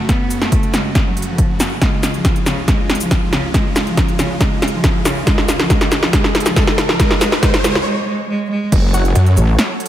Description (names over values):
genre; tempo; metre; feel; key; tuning
heavy wobble dubstep; 139 BPM; 4/4; half-time; unclear; A4 = 439 Hz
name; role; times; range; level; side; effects
supersaw chords; sustained chords; 0.0-9.9 s; C#2 to C#5; -26 LUFS; right 1 dB; sidechain pumping
warm cello; melody; 0.1-8.7 s; C#3 to B3; -22 LUFS; equal; ping-pong delay
big-room dance drum kit; drums; 0.1-9.9 s; crash cymbal, hi-hat, shaker, snare drum; -17 LUFS; equal; overdrive
electronic kick drum; drums; 0.1-8.8 s; none; -16 LUFS; equal; overdrive
riser; sound effects; 3.5-7.9 s; none; -25 LUFS; right 1 dB; none
wobble bass; bass; 8.7-9.6 s; F#1 to A1; -14 LUFS; equal; chorus, overdrive
orchestra-hit-like synth stab; stabs; 8.9-9.0 s; F#4 to F#5; -26 LUFS; right 1 dB; built-in reverb, ping-pong delay
snarling distorted saw bass; bass; 9.2-9.4 s; F#2; -11 LUFS; equal; overdrive
room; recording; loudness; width
light reverb; none; -13 LUFS; side -12 dB against mid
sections
0.0-8.7 A section; 8.7-9.9 B section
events
build-up 0.0-8.7; drum fill 0.0-7.9; riser 3.5-7.9; break 7.9-8.7; drop 8.7-9.9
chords
0.0 F#m; 1.8 C#; 8.7 F#m